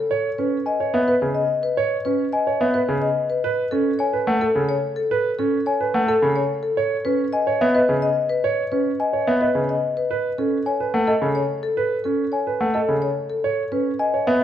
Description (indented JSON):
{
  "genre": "classical, minimalist pattern music",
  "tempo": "108 BPM",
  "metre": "3/4",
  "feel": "straight",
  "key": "B mixolydian",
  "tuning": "A4 = 443 Hz",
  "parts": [
    { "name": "marimba with medium hard mallets", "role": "melody", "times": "0.0-14.4 s", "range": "A4 to D#5", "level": "-23 LUFS", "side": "left 4 dB", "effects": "none" },
    { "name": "clear grand piano", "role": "arpeggios", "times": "0.1-14.4 s", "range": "C#4 to C#5", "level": "-24 LUFS", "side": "right 6 dB", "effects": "none" },
    { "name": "celesta", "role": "arpeggios", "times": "0.7-14.4 s", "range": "D#5 to G#5", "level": "-25 LUFS", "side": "equal", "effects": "none" },
    { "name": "bright concert grand piano", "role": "accompaniment", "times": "0.9-14.4 s", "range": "C#3 to B3", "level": "-23 LUFS", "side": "equal", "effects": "none" }
  ],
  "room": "moderate recital hall reverb, RT60 1.6 s",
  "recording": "worn, warbling old tape, cassette tape, warbly pitch drift",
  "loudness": "-19 LUFS",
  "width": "side -10 dB against mid",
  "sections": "0.0-14.4 A section",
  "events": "none",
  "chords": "0.1 Emaj7(no3) (rootless); 3.4 Bsus2; 6.8 Emaj7(no3) (rootless); 10.1 B9; 13.4 E"
}